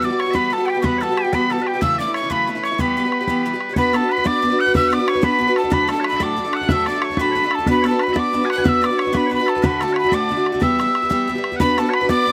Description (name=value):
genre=celtic folk, Celtic jig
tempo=123 BPM (dotted quarters)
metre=6/8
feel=straight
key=unclear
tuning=A4 = 441 Hz
part: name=breathy mellow mid whistle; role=melody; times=0.0-12.3 s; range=F#5 to F#6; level=-23 LUFS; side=equal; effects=slapback echo
part: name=loud bright bagpipes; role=second line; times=0.0-12.3 s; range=G4 to G#5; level=-28 LUFS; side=equal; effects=slapback echo
part: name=picked acoustic archtop guitar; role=accompaniment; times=0.0-12.3 s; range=D2 to B4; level=-22 LUFS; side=equal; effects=slapback echo
part: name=bodhran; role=percussion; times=0.2-12.3 s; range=none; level=-26 LUFS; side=equal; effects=none
room=little or no reverb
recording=recorded outdoors, with no room sound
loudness=-19 LUFS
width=mono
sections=0.0-3.8 A section; 3.8-11.6 B section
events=none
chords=0.0 Emadd9; 1.8 F#m7; 2.8 Em; 3.8 Bm; 5.7 D; 7.7 Bm; 9.6 D; 10.6 Em; 11.6 Bm